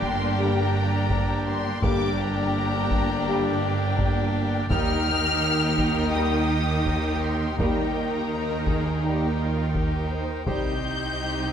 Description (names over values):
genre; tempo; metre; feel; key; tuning
cinematic, epic orchestral film score; 83 BPM; 4/4; straight; unclear; A4 = 440 Hz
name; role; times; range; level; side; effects
warm symphonic violin section; melody; 0.0-11.5 s; Bb5 to G6; -31 LUFS; left 4 dB; none
dark symphonic violin section; second line; 0.0-11.5 s; F4 to G5; -32 LUFS; left 4 dB; none
rich studio viola section; accompaniment; 0.0-11.5 s; Bb3 to Eb4; -29 LUFS; left 2 dB; none
pipe organ, trumpet; sustained chords; 0.0-11.5 s; D4 to G5; -33 LUFS; right 1 dB; none
rich symphonic cello section; bass; 0.0-11.5 s; G2 to Eb3; -29 LUFS; right 2 dB; none
rich symphonic double bass section; bass; 0.0-11.5 s; G1 to Eb2; -28 LUFS; right 3 dB; none
taiko ensemble; drums; 0.0-11.2 s; none; -30 LUFS; equal; none
warm French horn section; sustained chords; 0.4-10.7 s; Bb3 to G4; -32 LUFS; left 6 dB; none
warm trombone section; sustained chords; 0.4-10.7 s; D3 to G3; -36 LUFS; right 3 dB; none
room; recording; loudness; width
moderate concert hall reverb, RT60 2.1 s; none; -22 LUFS; side -8 dB against mid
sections
0.0-11.5 A section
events
none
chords
0.0 Gm; 4.7 Eb; 10.5 Cm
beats
0.38 1.10 | 1.82 2.55 3.27 3.99 | 4.71 5.43 6.15 6.87 | 7.59 8.31 9.03 9.75 | 10.47 11.19